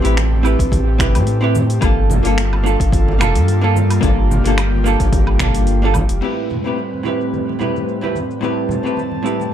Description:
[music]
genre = sunset chillout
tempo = 109 BPM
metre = 4/4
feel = swing 54% on 16ths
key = A phrygian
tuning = A4 = 440 Hz
[part]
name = vintage hollow-body jazz guitar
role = accompaniment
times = 0.0-9.5 s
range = A2 to B4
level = -20 LUFS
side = equal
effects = auto-pan, tape echo
[part]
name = airy breathy pad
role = sustained chords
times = 0.0-9.5 s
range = A2 to A5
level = -23 LUFS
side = right 1 dB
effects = chorus
[part]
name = warm sub bass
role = bass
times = 0.0-6.2 s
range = F1 to A2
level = -16 LUFS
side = equal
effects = none
[part]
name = smooth R&B drum kit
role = drums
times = 0.0-9.5 s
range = crash cymbal, finger snaps, hi-hat, shaker, woodblock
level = -26 LUFS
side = right 1 dB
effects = low-pass filter on hats, low-pass filter on perc, low-pass filter on snare, low-pass filter on cymbals
[part]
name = congas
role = percussion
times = 0.2-9.5 s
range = none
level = -26 LUFS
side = right 1 dB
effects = none
[part]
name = electronic kick drum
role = drums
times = 0.6-6.1 s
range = none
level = -19 LUFS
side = equal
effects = overdrive
[sound]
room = light reverb, digital ambience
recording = dark, warm production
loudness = -14 LUFS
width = side -10 dB against mid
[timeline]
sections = 0.0-6.2 A section; 6.2-9.5 B section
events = none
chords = 0.0 Am9; 1.8 Gm9; 6.2 Am9

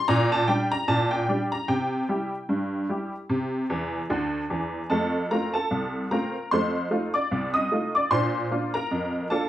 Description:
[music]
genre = ragtime piano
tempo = 75 BPM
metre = 2/4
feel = swing 57% on 16ths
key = F major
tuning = A4 = 441 Hz
[part]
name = honky-tonk upright piano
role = solo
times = 0.0-9.5 s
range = C2 to Eb6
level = -23 LUFS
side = equal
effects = none
[sound]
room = wet studio ambience, RT60 0.5 s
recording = band playing live in one room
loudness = -23 LUFS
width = side -13 dB against mid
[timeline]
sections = 0.0-4.9 A section; 4.9-9.5 B section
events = honky-tonk piano fill 3.7-4.9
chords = 0.0 Gm/Bb; 1.7 C; 4.9 F; 6.5 F7; 8.1 Bb

